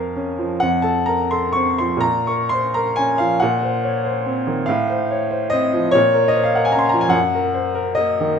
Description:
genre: classical, romantic nocturne for solo piano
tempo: 42-50 BPM (dotted quarters)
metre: 6/8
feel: rubato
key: Bb minor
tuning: A4 = 439 Hz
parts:
  - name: clear upright piano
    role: solo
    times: 0.0-8.4 s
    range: F2 to Db6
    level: -16 LUFS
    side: equal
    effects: none
room: moderate recital hall reverb, RT60 1.7 s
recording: minimal, uncompressed stereo recording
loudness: -16 LUFS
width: side -6 dB against mid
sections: 0.0-8.4 A section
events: none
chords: 0.0 Bbm/F; 0.6 F; 2.0 Bbm; 3.4 Cm7b5/Bb; 4.7 F/A; 5.9 Bbm; 7.2 Ebm/Gb

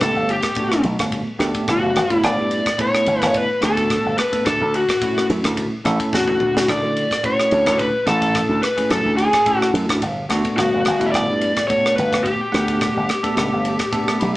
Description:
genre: electric jazz fusion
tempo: 108 BPM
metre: 4/4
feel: swing 53% on 16ths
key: G lydian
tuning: A4 = 440 Hz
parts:
  - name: lead guitar through a small cranked amp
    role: melody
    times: 0.0-14.4 s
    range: F#4 to E5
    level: -19 LUFS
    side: left 1 dB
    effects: overdrive
  - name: barky tine electric piano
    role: accompaniment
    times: 0.0-14.4 s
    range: C#3 to B5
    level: -23 LUFS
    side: right 1 dB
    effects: fast stereo tremolo
  - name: slap bass with an envelope filter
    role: bass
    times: 0.0-14.3 s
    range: F#1 to D3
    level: -22 LUFS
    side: equal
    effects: none
  - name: crisp fusion drum kit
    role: drums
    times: 0.0-14.3 s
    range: kick drum, ride cymbal, rim click, snare drum, toms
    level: -24 LUFS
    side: equal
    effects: none
room: moderate stone room reverb, RT60 1.2 s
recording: band playing live in one room, small speaker sound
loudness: -16 LUFS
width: side -18 dB against mid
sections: 0.0-14.4 A section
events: drum fill 6.1-6.7; tine electric piano fill 13.9-14.4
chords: 0.0 Gmaj9; 4.5 Dmaj9; 10.0 Gmaj9

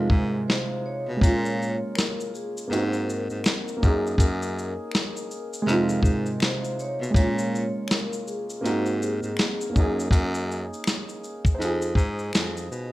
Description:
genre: lo-fi hip hop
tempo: 81 BPM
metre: 4/4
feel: swing 62% on 16ths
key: Bb minor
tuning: A4 = 439 Hz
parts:
  - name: vibraphone with soft mallets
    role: melody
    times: 0.0-9.9 s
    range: Gb4 to Db5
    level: -33 LUFS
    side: left 2 dB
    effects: low-pass filter, tape echo
  - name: dark upright piano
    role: accompaniment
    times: 0.0-12.9 s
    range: C3 to C5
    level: -28 LUFS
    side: right 2 dB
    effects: cassette tape, low-pass filter
  - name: breathy baritone saxophone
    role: bass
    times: 0.0-12.9 s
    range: F2 to Cb3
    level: -29 LUFS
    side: equal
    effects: none
  - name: dusty soul sampler-style drum kit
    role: drums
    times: 0.1-12.9 s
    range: hi-hat, kick drum, shaker, snare drum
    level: -23 LUFS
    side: equal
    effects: none
  - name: finger snap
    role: percussion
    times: 2.0-12.5 s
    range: none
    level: -38 LUFS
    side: left 3 dB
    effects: none
room: moderate studio reverb, RT60 0.7 s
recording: rough home demo mix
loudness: -22 LUFS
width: side -17 dB against mid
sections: 0.0-12.9 A section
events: break 0.0-1.2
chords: 0.0 Fm7; 1.2 Bbm7; 2.7 Ab7; 3.8 Gb6; 5.7 Fm7; 7.1 Bbm7; 8.6 Ab7; 9.7 Gb6; 11.6 Fm7

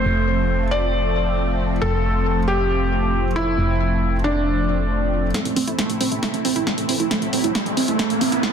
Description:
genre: uplifting trance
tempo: 136 BPM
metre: 4/4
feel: straight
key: A minor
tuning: A4 = 440 Hz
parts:
  - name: felt-muted upright piano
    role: second line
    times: 0.0-5.3 s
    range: D4 to D5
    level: -23 LUFS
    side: left 1 dB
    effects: ping-pong delay
  - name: lush unison pad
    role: sustained chords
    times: 0.0-8.5 s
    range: F3 to E4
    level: -24 LUFS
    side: right 1 dB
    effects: chorus, phaser
  - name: solid FM bass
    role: bass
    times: 0.0-8.4 s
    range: F1 to A1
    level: -23 LUFS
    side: equal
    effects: high-pass filter
  - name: wide unison pluck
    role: arpeggios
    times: 5.3-8.5 s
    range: A3 to E4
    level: -23 LUFS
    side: right 6 dB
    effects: dub echo
  - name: punchy analog drum machine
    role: drums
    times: 5.3-8.5 s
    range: hi-hat, snare drum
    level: -24 LUFS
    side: equal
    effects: low-pass filter on snare, low-pass filter on hats
  - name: riser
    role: sound effects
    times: 6.2-8.5 s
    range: none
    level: -27 LUFS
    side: equal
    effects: none
room: light reverb, digital ambience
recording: dense, heavily limited modern master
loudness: -18 LUFS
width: side -7 dB against mid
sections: 0.0-5.3 A section; 5.3-8.5 B section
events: build-up 5.3-8.5; drum fill 5.3-8.5; filter sweep on synth arpeggio sound 5.3-8.5; riser 6.2-8.5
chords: 0.0 F; 5.3 Am

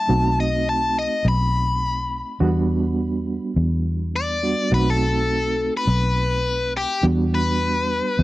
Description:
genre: straight-eighth soul blues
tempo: 104 BPM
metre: 4/4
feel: swing 55% on 16ths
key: E minor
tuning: A4 = 440 Hz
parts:
  - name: biting overdriven guitar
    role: melody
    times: 0.0-8.2 s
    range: G4 to B5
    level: -22 LUFS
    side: left 3 dB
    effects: none
  - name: reed electric piano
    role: accompaniment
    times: 0.0-8.2 s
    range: G3 to F#4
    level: -25 LUFS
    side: right 4 dB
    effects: fast tremolo
  - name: vintage muted fingered electric bass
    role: bass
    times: 0.1-8.2 s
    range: B1 to E2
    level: -22 LUFS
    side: equal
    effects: none
room: little or no reverb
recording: dry, close 1970s-style studio recording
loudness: -19 LUFS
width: side -17 dB against mid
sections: 0.0-7.0 A section; 7.0-8.2 B section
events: overdriven electric guitar solo 7.0-8.2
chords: 0.1 B7b9; 2.4 Em7; 4.7 B7b9; 7.0 Em7

